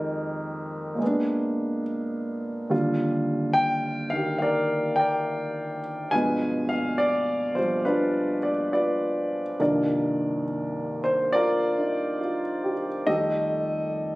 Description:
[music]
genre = solo jazz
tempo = 70 BPM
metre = 4/4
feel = swing 66% on 8ths, rubato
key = unclear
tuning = A4 = 440 Hz
[part]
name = warm upright piano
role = solo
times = 0.0-14.2 s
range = C2 to Ab5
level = -23 LUFS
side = equal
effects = none
[sound]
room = light reverb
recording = recorded on a phone in the room, studio reverb, compression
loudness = -23 LUFS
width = side -20 dB against mid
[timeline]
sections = 0.0-14.2 A section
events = none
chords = 0.0 Fm9; 1.0 Bb7b9; 2.7 Ebmaj9; 6.1 G7b9; 9.6 Cm11; 13.1 F9

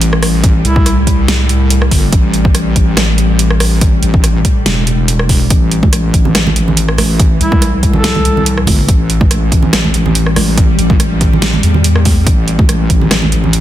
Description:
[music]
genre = deep dubstep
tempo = 142 BPM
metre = 4/4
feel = swing 53% on 16ths, half-time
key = A minor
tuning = A4 = 440 Hz
[part]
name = bowed-like drone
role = sustained chords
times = 0.0-13.6 s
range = A2 to G3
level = -19 LUFS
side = left 3 dB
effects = built-in reverb, vintage 12-bit sampler grit
[part]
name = wobble bass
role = bass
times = 0.0-13.6 s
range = E1 to E2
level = -13 LUFS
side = equal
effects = chorus
[part]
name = dubstep drum kit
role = drums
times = 0.0-13.6 s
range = hi-hat, rim click, snare drum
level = -16 LUFS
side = right 1 dB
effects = studio reverb, soft clipping on snare
[part]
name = electronic kick drum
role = drums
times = 0.4-13.0 s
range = none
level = -11 LUFS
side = equal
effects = overdrive, studio reverb
[part]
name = warm duduk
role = melody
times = 0.6-1.0, 7.4-8.5 s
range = E4 to A4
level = -20 LUFS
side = equal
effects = dub echo
[part]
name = congas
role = percussion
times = 5.8-13.5 s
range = none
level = -18 LUFS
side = right 4 dB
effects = dub echo
[sound]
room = little or no reverb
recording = dense, heavily limited modern master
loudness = -9 LUFS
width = side -12 dB against mid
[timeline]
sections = 0.0-13.6 A section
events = none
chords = 0.0 A5

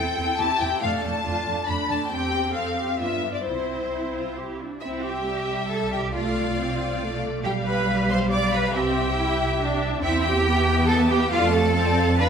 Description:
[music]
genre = quick classical-period movement for string orchestra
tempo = 138 BPM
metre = 3/4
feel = rubato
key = C major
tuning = A4 = 439 Hz
[part]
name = rich studio violin section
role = melody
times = 0.0-12.3 s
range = C5 to B5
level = -28 LUFS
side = left 6 dB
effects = none
[part]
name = rich studio violin section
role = second line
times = 0.0-12.3 s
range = C5 to D6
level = -30 LUFS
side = left 2 dB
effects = none
[part]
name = rich studio viola section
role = accompaniment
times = 0.0-12.3 s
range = G3 to A4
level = -27 LUFS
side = equal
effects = none
[part]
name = clear studio cello section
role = bass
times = 0.0-12.3 s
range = C4 to D5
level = -27 LUFS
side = right 3 dB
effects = none
[part]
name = warm studio double bass section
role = bass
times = 0.0-12.3 s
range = B1 to G2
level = -28 LUFS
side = right 2 dB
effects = none
[sound]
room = moderate concert hall reverb, RT60 1.8 s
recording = minimal, uncompressed stereo recording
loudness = -21 LUFS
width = side -7 dB against mid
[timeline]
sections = 0.0-4.8 A section; 4.8-12.3 B section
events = none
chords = 0.0 C/E; 0.8 Dm/F; 2.1 C/E; 2.6 F; 3.0 G7; 3.5 C; 6.1 Dm7/C; 7.4 G7/B; 8.7 C; 10.0 C/E; 11.3 Dm/F

